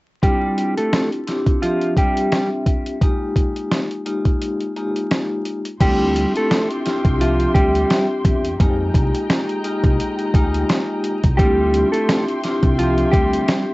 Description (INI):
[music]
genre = hip hop, boom-bap hip-hop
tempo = 86 BPM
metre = 4/4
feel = swing 56% on 16ths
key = unclear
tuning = A4 = 440 Hz
[part]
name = mellow electric guitar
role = melody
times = 0.2-13.6 s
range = F3 to A4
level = -21 LUFS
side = equal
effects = harmonic tremolo, high-pass filter, low-pass filter, analog delay
[part]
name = vibraphone with soft mallets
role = accompaniment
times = 0.2-13.7 s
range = Ab3 to E5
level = -22 LUFS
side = left 1 dB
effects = cassette tape, high-pass filter, low-pass filter
[part]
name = dusty soul sampler-style drum kit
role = drums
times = 0.2-13.7 s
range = crash cymbal, hi-hat, kick drum, rim click, snare drum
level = -18 LUFS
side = equal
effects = cassette tape
[part]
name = dark studio string section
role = sustained chords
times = 5.8-13.7 s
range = Ab3 to C6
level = -29 LUFS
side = equal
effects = high-pass filter, low-pass filter, cassette tape
[part]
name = upright bass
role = bass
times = 5.8-13.4 s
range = C2 to F2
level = -21 LUFS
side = equal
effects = none
[sound]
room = little or no reverb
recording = home recording on cassette, vinyl crackle, nothing above 8.0 kHz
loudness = -16 LUFS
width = side -21 dB against mid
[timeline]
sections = 0.2-5.8 A section; 5.8-13.7 B section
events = break 4.4-5.8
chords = 0.2 Dm11; 3.0 Fm11; 5.8 Dm11; 8.6 Fm11; 11.4 Dm11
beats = | 0.23 0.92 1.62 2.32 | 3.02 3.71 4.41 5.11 | 5.81 6.50 7.20 7.90 | 8.60 9.29 9.99 10.69 | 11.39 12.09 12.78 13.48